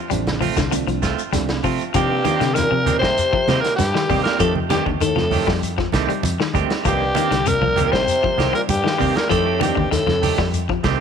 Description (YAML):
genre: afrobeat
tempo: 98 BPM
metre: 4/4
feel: straight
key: C dorian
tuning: A4 = 440 Hz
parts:
  - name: electric guitar at the edge of break-up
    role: arpeggios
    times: 0.0-10.9 s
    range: C3 to G3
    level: -25 LUFS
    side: left 13 dB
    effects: none
  - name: barky reed electric piano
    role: accompaniment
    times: 0.1-1.6 s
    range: F3 to D4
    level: -28 LUFS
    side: right 14 dB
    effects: overdrive
  - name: fingered electric bass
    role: bass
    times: 0.1-11.0 s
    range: A1 to C3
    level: -24 LUFS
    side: equal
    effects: none
  - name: vintage drum kit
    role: drums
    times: 0.1-11.0 s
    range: hi-hat, kick drum, snare drum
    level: -26 LUFS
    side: equal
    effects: none
  - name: shekere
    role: percussion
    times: 0.1-11.0 s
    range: none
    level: -29 LUFS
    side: left 5 dB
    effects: none
  - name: congas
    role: percussion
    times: 0.3-11.0 s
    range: none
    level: -26 LUFS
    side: right 6 dB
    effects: none
  - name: semi-hollow electric guitar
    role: stabs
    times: 0.4-11.0 s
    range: Eb3 to G4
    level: -25 LUFS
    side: right 13 dB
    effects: spring reverb, slapback echo
  - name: raspy alto saxophone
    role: melody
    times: 1.9-10.5 s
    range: G4 to C5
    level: -20 LUFS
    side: left 1 dB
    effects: none
  - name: muted trombone section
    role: second line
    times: 1.9-10.5 s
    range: G2 to C3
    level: -27 LUFS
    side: left 1 dB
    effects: none
room: light reverb, studio reverb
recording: 1960s-style stereo with parts hard left and right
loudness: -16 LUFS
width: side -7 dB against mid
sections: 0.0-2.0 A section; 2.0-11.0 B section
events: none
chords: 0.0 Dm7; 2.0 Cm7; 4.4 F9; 6.9 Cm7; 9.3 F9